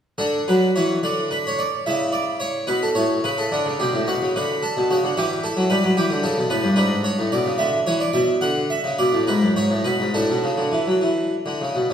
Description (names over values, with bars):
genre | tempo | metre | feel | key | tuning
classical, baroque-style suite movement for harpsichord | 72 BPM (dotted quarters) | 12/8 | uneven beats, rubato | D major | A4 = 440 Hz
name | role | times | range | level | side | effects
harpsichord | solo | 0.2-11.9 s | F#2 to F#5 | -18 LUFS | equal | none
room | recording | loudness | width
wet recital hall reverb, RT60 1.7 s | recorded in a church or concert hall | -18 LUFS | side -8 dB against mid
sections
0.2-11.9 A section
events
none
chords
0.2 D; 1.9 A/C#; 3.5 D5; 5.2 Em; 6.8 E7/G#; 10.1 D/A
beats
| 0.19 1.04 1.88 2.69 | 3.52 4.35 5.16 5.96 | 6.77 7.59 8.42 9.27 | 10.13 11.01 11.90